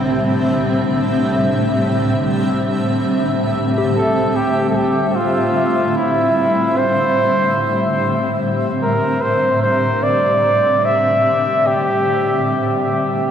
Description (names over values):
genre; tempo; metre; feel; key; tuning
ambient; free time; none; none; C major; A4 = 440 Hz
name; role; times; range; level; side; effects
granular cloud pad; sustained chords; 0.0-13.3 s; C2 to E5; -17 LUFS; equal; built-in reverb
analog drone; drone; 0.0-13.3 s; C3 to G3; -29 LUFS; equal; none
soft synth bell; arpeggios; 3.8-4.8 s; G4; -29 LUFS; left 3 dB; none
clear flugelhorn; melody; 4.0-12.9 s; E4 to E5; -16 LUFS; equal; diffuse ambient delay
room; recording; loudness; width
wet huge ambient reverb, RT60 8.7 s; dreamy mix soaked in reverb; -14 LUFS; side -8 dB against mid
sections
0.0-4.4 A section; 4.4-13.3 B section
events
none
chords
0.0 C69